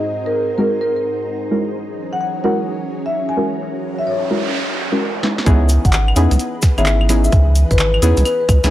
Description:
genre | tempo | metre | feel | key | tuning
UK garage, two-step garage | 129 BPM | 4/4 | swing 65% on 16ths | C# dorian | A4 = 440 Hz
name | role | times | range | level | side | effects
soft string machine | sustained chords | 0.0-8.7 s | G#2 to A#5 | -29 LUFS | right 1 dB | ensemble chorus, sidechain pumping
ethereal airy pad | texture | 0.0-5.0 s | C#4 to B#4 | -28 LUFS | right 1 dB | ensemble chorus, built-in reverb, phaser, sidechain pumping
marimba with soft mallets | melody | 0.3-8.5 s | A#4 to G#5 | -21 LUFS | left 2 dB | vintage 12-bit sampler grit, analog delay
deep mellow chord stab | stabs | 0.6-8.7 s | G#3 to B4 | -20 LUFS | equal | chorus, analog delay
noise sweep | sound effects | 3.9-5.5 s | none | -26 LUFS | right 3 dB | none
punchy analog drum machine | drums | 5.2-8.7 s | claves, handclaps, hi-hat, snare drum | -22 LUFS | equal | low-pass filter on snare, low-pass filter on hats, low-pass filter on perc
rubbery square bass | bass | 5.5-8.7 s | G#1 to E2 | -14 LUFS | equal | none
electronic kick drum | drums | 5.5-8.6 s | none | -14 LUFS | equal | none
cabasa | percussion | 5.5-8.7 s | none | -29 LUFS | left 2 dB | none
room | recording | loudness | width
digital ambience | dry, gritty hardware recording | -14 LUFS | side -14 dB against mid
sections
0.0-5.5 A section; 5.5-8.7 B section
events
noise sweep 3.9-5.5; drum fill 5.2; drop 5.5-8.7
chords
0.0 G#7; 1.5 F#9; 5.5 C#m7

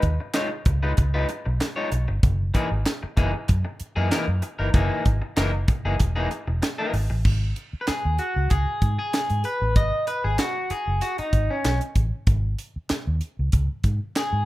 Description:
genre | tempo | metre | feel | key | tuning
funk | 96 BPM | 4/4 | straight | G# minor | A4 = 439 Hz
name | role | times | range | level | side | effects
vintage muted fingered electric bass | bass | 0.0-14.4 s | E1 to G#2 | -24 LUFS | equal | none
crisp fusion drum kit | drums | 0.0-14.3 s | crash cymbal, handclaps, hi-hat, kick drum, snare drum | -23 LUFS | equal | none
electric guitar through a small old amp | accompaniment | 0.2-14.5 s | E3 to D#5 | -27 LUFS | left 1 dB | spring reverb
room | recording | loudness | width
little or no reverb | rough home demo mix | -21 LUFS | side -17 dB against mid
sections
0.0-7.3 A section; 7.3-14.5 B section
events
clean electric guitar solo 7.3-14.5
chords
0.0 C#9; 2.2 F#13; 7.3 G#7(no3)

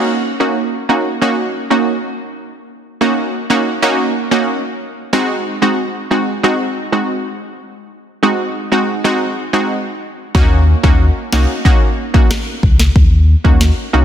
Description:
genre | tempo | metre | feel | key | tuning
dancehall | 92 BPM | 4/4 | straight | Eb dorian | A4 = 438 Hz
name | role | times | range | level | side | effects
analog pluck | accompaniment | 0.0-14.0 s | Ab3 to Gb4 | -15 LUFS | right 1 dB | chorus
sub bass with octave | bass | 10.3-14.0 s | C2 to Eb2 | -11 LUFS | equal | none
afro-pop drum kit | drums | 10.3-13.8 s | kick drum, rim click, snare drum | -12 LUFS | equal | none
room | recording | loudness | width
light reverb, digital ambience | dense, heavily limited modern master | -12 LUFS | side -9 dB against mid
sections
0.0-14.0 A section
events
none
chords
0.0 Ebm7; 5.1 Ab7; 10.3 Ebm7

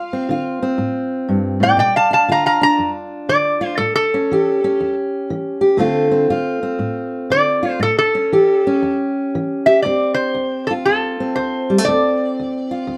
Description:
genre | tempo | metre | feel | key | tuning
acoustic country blues, solo or duo | 119 BPM | 4/4 | swing 65% on 8ths | D minor | A4 = 440 Hz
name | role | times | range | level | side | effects
lap resonator guitar | melody | 0.0-13.0 s | A4 to Bb5 | -18 LUFS | equal | none
fingerpicked steel-string acoustic guitar | accompaniment | 0.0-13.0 s | D2 to G4 | -20 LUFS | equal | none
room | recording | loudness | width
moderate studio reverb, RT60 0.6 s | dark, warm production | -17 LUFS | mono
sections
0.0-9.8 A section; 9.8-13.0 B section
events
resonator guitar played with a steel bar solo 0.0-9.8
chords
0.0 Dm7; 1.8 Bb; 3.8 A7; 5.8 Dm7; 7.8 A7; 9.8 Dm7

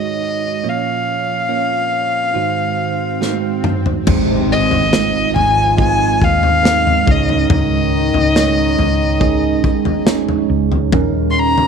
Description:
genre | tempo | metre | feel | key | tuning
pop ballad | 70 BPM | 4/4 | straight | unclear | A4 = 440 Hz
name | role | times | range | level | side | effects
dark violin | melody | 0.0-11.7 s | Eb5 to C6 | -17 LUFS | left 2 dB | none
bell-like tine electric piano | accompaniment | 0.0-11.7 s | Ab2 to Eb5 | -18 LUFS | right 13 dB | phaser
swell and impact | sound effects | 1.7-7.5 s | none | -29 LUFS | left 2 dB | none
modern studio drum kit | drums | 3.2-11.7 s | crash cymbal, kick drum, snare drum, toms | -18 LUFS | left 2 dB | none
warm French horn section | second line | 4.1-11.7 s | C3 to F4 | -22 LUFS | left 11 dB | none
woody fretless electric bass | bass | 4.1-11.7 s | Ab1 to Eb2 | -20 LUFS | left 1 dB | none
room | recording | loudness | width
light reverb | 1960s-style stereo with parts hard left and right | -13 LUFS | side -6 dB against mid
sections
0.0-4.1 A section; 4.1-11.7 B section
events
swell 1.7-4.1; drum fill 3.2-4.1; impact 4.1-7.5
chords
0.0 Ab7sus4; 0.6 Bbm; 2.4 Ab7; 4.1 Ab; 7.1 Dbsus2; 10.9 Eb7

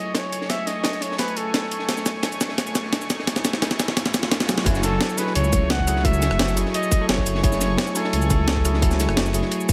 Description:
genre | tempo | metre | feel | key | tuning
liquid drum and bass | 173 BPM | 4/4 | straight | F# minor | A4 = 441 Hz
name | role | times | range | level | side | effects
clear flugelhorn | melody | 0.0-2.1, 4.8-9.3 s | A4 to F#5 | -30 LUFS | equal | low-pass filter, digital delay
bell-like tine electric piano | accompaniment | 0.0-9.7 s | F#3 to G#5 | -30 LUFS | equal | low-pass filter
warm analog pad | sustained chords | 0.0-9.7 s | A3 to C#6 | -34 LUFS | equal | chorus, tremolo
dark detuned saw bass | bass | 0.0-9.7 s | E1 to C#2 | -27 LUFS | equal | high-pass filter
riser | sound effects | 1.1-4.7 s | none | -38 LUFS | equal | none
breakbeat sampler-style drum kit | drums | 0.1-9.7 s | cabasa, hi-hat, rim click, snare drum | -27 LUFS | equal | none
crunchy breakbeat drum kit | drums | 0.1-9.7 s | ride cymbal, snare drum | -32 LUFS | equal | high-pass filter on cymbals, high-pass filter on snare, high-pass filter on room
electronic kick drum | drums | 4.7-9.7 s | none | -24 LUFS | equal | none
room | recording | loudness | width
light reverb, small room ambience | none | -22 LUFS | mono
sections
0.0-4.7 A section; 4.7-9.7 B section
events
build-up 0.0-4.7; drum fill 0.0-4.7; filter sweep on tine electric piano 0.0-4.7; riser 1.1-4.7; drop 4.7-9.7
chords
0.0 F#m9

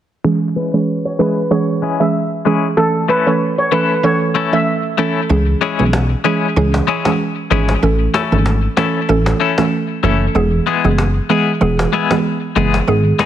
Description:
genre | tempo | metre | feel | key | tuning
dancehall | 95 BPM | 4/4 | swing 56% on 16ths | C# minor | A4 = 441 Hz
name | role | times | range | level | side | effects
steel pan | melody | 0.2-4.7 s | G#4 to E5 | -18 LUFS | equal | low-pass filter, digital delay
mallet-like synth pluck | accompaniment | 0.2-13.3 s | D#3 to A4 | -16 LUFS | right 3 dB | chorus, low-pass filter
clean electric guitar | arpeggios | 0.6-13.3 s | G#3 to A4 | -19 LUFS | left 9 dB | tremolo, low-pass filter, digital delay
plucky analog bass | bass | 5.3-13.1 s | E1 to C#2 | -15 LUFS | left 1 dB | none
cajon | drums | 5.6-13.3 s | none | -22 LUFS | equal | none
room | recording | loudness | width
light reverb, small room ambience | heavily compressed radio sound | -13 LUFS | side -11 dB against mid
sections
0.2-5.3 A section; 5.3-13.3 B section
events
filter sweep 0.2-5.3; kick muted 5.3-13.3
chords
0.2 C#m; 2.8 A; 5.3 C#m; 7.8 A; 10.4 E

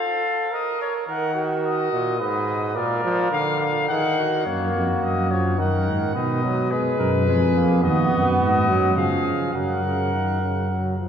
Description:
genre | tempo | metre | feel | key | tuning
classical, imitative canzona for brass ensemble | 107 BPM | 3/4 | straight | Eb minor, F# major from 7.8 s | A4 = 445 Hz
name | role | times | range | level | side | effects
clear trumpet | melody | 0.0-10.9 s | Cb5 to Gb5 | -26 LUFS | left 6 dB | none
mellow trumpet | second line | 0.0-11.0 s | Gb4 to Cb5 | -27 LUFS | right 4 dB | none
brilliant trombone | accompaniment | 1.1-11.1 s | Ab2 to B3 | -24 LUFS | right 1 dB | none
mellow tuba | bass | 4.5-10.9 s | D#2 to C#3 | -22 LUFS | right 1 dB | none
room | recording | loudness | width
wet church reverb, RT60 3.4 s | heard from further back in the room | -19 LUFS | side -8 dB against mid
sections
0.0-4.5 A section; 4.5-11.1 B section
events
none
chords
0.0 F; 0.5 Bbm; 1.1 Ebm; 2.2 Abm; 2.8 Bb; 3.9 Ebm; 4.5 Gb; 5.6 Ebm/Gb; 6.2 Abm/Cb; 7.3 Fdim; 7.8 B/D#; 9.0 C#; 9.5 F#

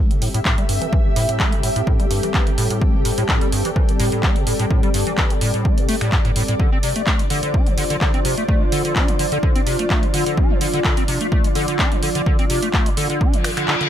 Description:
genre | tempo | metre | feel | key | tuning
acid house | 127 BPM | 4/4 | swing 54% on 16ths | A minor | A4 = 441 Hz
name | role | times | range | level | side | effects
lush unison pad | sustained chords | 0.1-13.9 s | F3 to D5 | -28 LUFS | equal | chorus, sidechain pumping
liquid acid bass | riff | 0.0-13.9 s | G2 to D4 | -23 LUFS | equal | overdrive, analog chorus, tape echo
ethereal airy pad | texture | 0.1-13.9 s | F4 to E5 | -25 LUFS | left 1 dB | ensemble chorus, built-in reverb, sidechain pumping
punchy analog drum machine | drums | 0.1-13.9 s | finger snaps, handclaps, hi-hat | -24 LUFS | equal | none
electronic kick drum | drums | 0.5-13.3 s | none | -19 LUFS | equal | none
reverse cymbal | sound effects | 13.4-13.9 s | none | -24 LUFS | left 4 dB | none
room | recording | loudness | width
little or no reverb | none | -16 LUFS | side -10 dB against mid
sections
0.0-13.9 A section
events
reverse cymbal 13.4-13.9; kick drops out 13.7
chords
0.0 Am7; 6.6 Dm7

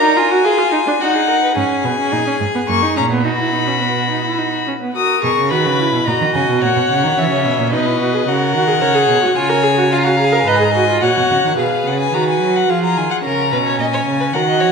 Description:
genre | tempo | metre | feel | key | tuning
classical, baroque-style fugue for string quartet | 108 BPM | 3/4 | straight | B major | A4 = 440 Hz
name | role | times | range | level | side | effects
dark violin | melody | 0.0-14.7 s | D#5 to D#6 | -18 LUFS | left 6 dB | none
warm violin | second line | 0.0-14.7 s | F4 to E#5 | -21 LUFS | left 1 dB | none
warm viola | accompaniment | 0.0-14.7 s | A#3 to B4 | -18 LUFS | right 3 dB | none
rich cello | bass | 1.6-14.7 s | F#2 to F#3 | -20 LUFS | right 4 dB | none
room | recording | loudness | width
wet scoring stage reverb, RT60 1.8 s | minimal, uncompressed stereo recording | -13 LUFS | side -5 dB against mid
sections
0.0-1.6 A section; 1.6-5.0 B section; 5.0-11.6 C section; 11.6-14.7 B section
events
none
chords
0.0 Bb7(no3); 1.0 Ebm; 1.6 G#m; 2.7 F# (rootless); 3.2 B; 6.1 F#; 6.6 F#7; 7.7 B; 8.3 F#/C#; 9.4 C#; 11.0 F#5; 11.6 B; 12.7 D#sus24; 13.2 A#m7

